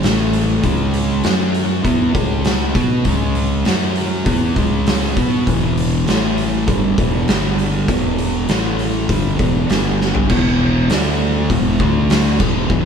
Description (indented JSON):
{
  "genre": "stoner and doom metal",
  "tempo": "99 BPM",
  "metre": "4/4",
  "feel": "straight",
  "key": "E dorian",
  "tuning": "A4 = 440 Hz",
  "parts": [
    { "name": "thick fuzz guitar", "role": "riff", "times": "0.0-12.8 s", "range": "E2 to B4", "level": "-18 LUFS", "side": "equal", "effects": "distortion" },
    { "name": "fuzz fingered electric bass", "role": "bass", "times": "0.0-12.8 s", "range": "E1 to B2", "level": "-21 LUFS", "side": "equal", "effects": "overdrive" },
    { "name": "oversized low-tuned drum kit", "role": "drums", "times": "0.0-12.8 s", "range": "crash cymbal, hi-hat, kick drum, snare drum, toms", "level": "-18 LUFS", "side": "equal", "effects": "none" }
  ],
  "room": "light reverb",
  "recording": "band playing live in one room",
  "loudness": "-14 LUFS",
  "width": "side -7 dB against mid",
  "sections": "0.0-10.3 A section; 10.3-12.8 B section",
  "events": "drum fill 10.0-10.3",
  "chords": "0.0 A5; 0.6 C#5; 1.2 F#5; 1.8 C#5; 3.7 F#5; 4.3 C#5; 5.5 E5; 6.1 A5; 6.7 Em; 7.3 G5; 7.9 E5; 8.5 A5; 9.1 Em; 9.7 G5; 10.3 E5; 10.9 D5; 11.5 E5; 11.8 D5"
}